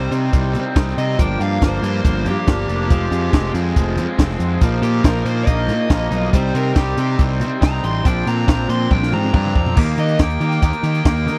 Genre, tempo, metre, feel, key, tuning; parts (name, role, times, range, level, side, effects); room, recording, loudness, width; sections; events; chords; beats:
indie rock; 140 BPM; 4/4; straight; C minor; A4 = 439 Hz
dark smooth lead guitar; melody; 0.0-11.4 s; G4 to C6; -28 LUFS; equal; overdrive
raw garage guitar; riff; 0.0-11.4 s; F3 to Eb4; -28 LUFS; equal; overdrive, lush chorus
twangy electric guitar; riff; 0.0-11.4 s; F3 to G4; -27 LUFS; equal
fuzz picked electric bass; bass; 0.0-11.4 s; F1 to Eb3; -22 LUFS; equal; overdrive
compact cocktail drum kit; drums; 0.1-11.4 s; crash cymbal, hi-hat, kick drum, snare drum, toms; -18 LUFS; equal
little or no reverb; dry, close 1970s-style studio recording; -18 LUFS; mono
0.0-9.8 A section; 9.8-11.4 B section
lead electric guitar solo 0.0-9.8; drum fill 8.9-9.8
0.0 Cm; 1.2 Gm7; 2.9 Fm; 4.6 Bbsus4; 6.3 Cm; 8.1 Bbadd9; 9.8 Eb
0.34 0.76 | 1.19 1.62 2.05 2.48 | 2.90 3.33 3.76 4.19 | 4.62 5.05 5.48 5.91 | 6.34 6.77 7.20 7.63 | 8.06 8.49 8.91 9.34 | 9.77 10.20 10.63 11.05